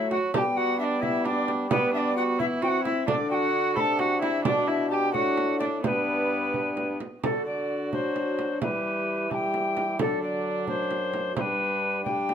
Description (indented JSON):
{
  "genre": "classical, renaissance-style consort dance",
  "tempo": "87 BPM (dotted quarters)",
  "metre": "6/8",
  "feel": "straight",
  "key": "unclear",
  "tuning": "A4 = 440 Hz",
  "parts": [
    { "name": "alto recorder", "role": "melody", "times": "0.0-12.3 s", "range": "A4 to B5", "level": "-28 LUFS", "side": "left 2 dB", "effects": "none" },
    { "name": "warm viola", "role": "second line", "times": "0.0-12.3 s", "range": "B3 to A4", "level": "-30 LUFS", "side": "right 4 dB", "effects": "none" },
    { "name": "warm trombone", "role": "accompaniment", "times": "0.0-12.3 s", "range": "F#3 to D4", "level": "-32 LUFS", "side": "left 3 dB", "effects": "none" },
    { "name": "mellow bassoon", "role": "bass", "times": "0.0-12.3 s", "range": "F#2 to G3", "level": "-32 LUFS", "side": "equal", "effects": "none" },
    { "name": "frame drum", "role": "percussion", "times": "0.1-12.3 s", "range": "none", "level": "-32 LUFS", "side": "right 4 dB", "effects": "none" }
  ],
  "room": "light reverb",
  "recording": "close, detailed microphones",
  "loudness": "-24 LUFS",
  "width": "side -8 dB against mid",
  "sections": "0.0-7.2 A section; 7.2-12.3 B section",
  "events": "none",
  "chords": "0.3 G; 3.1 D; 4.5 Bm; 5.8 G; 7.2 D; 8.6 Em; 10.0 D; 11.4 G",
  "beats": "| 0.34 1.02 | 1.71 2.39 | 3.08 3.76 | 4.45 5.14 | 5.83 6.54 | 7.23 7.92 | 8.61 9.31 | 9.99 10.68 | 11.36 12.06"
}